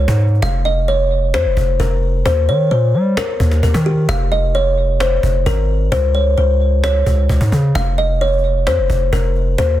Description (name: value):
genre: hip hop, trap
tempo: 131 BPM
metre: 4/4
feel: half-time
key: F minor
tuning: A4 = 441 Hz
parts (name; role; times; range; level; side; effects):
- kalimba; melody; 0.0-9.8 s; G4 to F5; -18 LUFS; left 1 dB; tape echo
- long sustained 808-style bass; bass; 0.0-9.8 s; F1 to G3; -15 LUFS; equal; none
- cajon; drums; 0.1-9.7 s; none; -23 LUFS; equal; none
room: studio ambience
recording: dense, heavily limited modern master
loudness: -13 LUFS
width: side -13 dB against mid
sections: 0.4-9.8 A section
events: hi-hats muted 0.4-7.8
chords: 0.4 F5; 2.3 Eb5; 4.1 Fm; 5.9 Db5; 7.8 F5